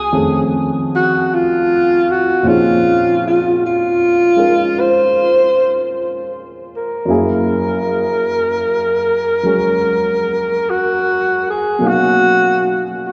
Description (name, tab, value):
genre	jazz ballad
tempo	51 BPM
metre	4/4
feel	swing 67% on 8ths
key	unclear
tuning	A4 = 440 Hz
part	breathy alto saxophone	melody	0.0-13.1 s	F4 to C5	-16 LUFS	equal	none
part	warm baby grand piano	accompaniment	0.0-13.1 s	C2 to F5	-22 LUFS	equal	none
room	wet cathedral reverb, RT60 4.9 s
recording	recorded in a church or concert hall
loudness	-15 LUFS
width	mono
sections	0.0-13.1 A section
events	none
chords	0.1 F7alt; 2.5 Bbm11; 7.1 Gb9; 11.8 Cbmaj9#11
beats	0.13 1.30 | 2.46 3.62 4.77 5.93 | 7.10 8.27 9.44 10.63 | 11.82 13.01